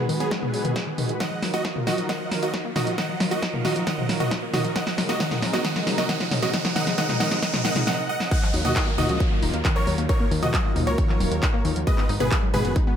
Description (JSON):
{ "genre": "uplifting trance", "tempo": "135 BPM", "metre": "4/4", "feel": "straight", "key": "Eb minor", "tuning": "A4 = 440 Hz", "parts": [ { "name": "supersaw stab", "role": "melody", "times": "0.0-12.8 s", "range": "Cb4 to Gb5", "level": "-28 LUFS", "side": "right 1 dB", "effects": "sidechain pumping, ping-pong delay" }, { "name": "lush unison pad", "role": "sustained chords", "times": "0.0-12.9 s", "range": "C3 to Cb5", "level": "-31 LUFS", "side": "right 1 dB", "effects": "chorus, sidechain pumping" }, { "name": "wide unison pluck", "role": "arpeggios", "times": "0.0-12.9 s", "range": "Eb3 to Eb4", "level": "-30 LUFS", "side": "left 3 dB", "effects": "sidechain pumping, ping-pong delay" }, { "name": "riser and downlifter", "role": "sound effects", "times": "0.1-11.9 s", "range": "none", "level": "-35 LUFS", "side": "right 1 dB", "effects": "none" }, { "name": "punchy analog drum machine", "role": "drums", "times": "0.1-12.8 s", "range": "crash cymbal, handclaps, hi-hat, snare drum, toms", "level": "-27 LUFS", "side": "equal", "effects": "sidechain pumping on hats, sidechain pumping on toms, sidechain pumping on cymbals" }, { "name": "electronic kick drum", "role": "drums", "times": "0.3-12.8 s", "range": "none", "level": "-23 LUFS", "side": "equal", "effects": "high-pass filter on kick" }, { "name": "clear grand piano", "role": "second line", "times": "8.3-12.8 s", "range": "Cb6 to Gb6", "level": "-35 LUFS", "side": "left 3 dB", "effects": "sidechain pumping, ping-pong delay" }, { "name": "fat analog bass", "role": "bass", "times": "8.5-12.7 s", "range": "Eb1 to Eb2", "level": "-26 LUFS", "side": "equal", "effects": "sidechain pumping" } ], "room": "light reverb, digital ambience", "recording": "none", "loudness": "-21 LUFS", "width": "side -9 dB against mid", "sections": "0.0-8.3 A section; 8.3-13.0 B section", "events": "build-up 0.0-8.3; drum fill 0.0-7.9, 7.9-8.3; filter sweep on synth arpeggio sound 0.0-8.3; riser 0.1-7.9; drop 8.3-13.0", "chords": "0.0 Abm7; 1.2 Ebmadd9; 4.8 Abadd9; 8.3 Ebmadd9; 11.9 Abm7" }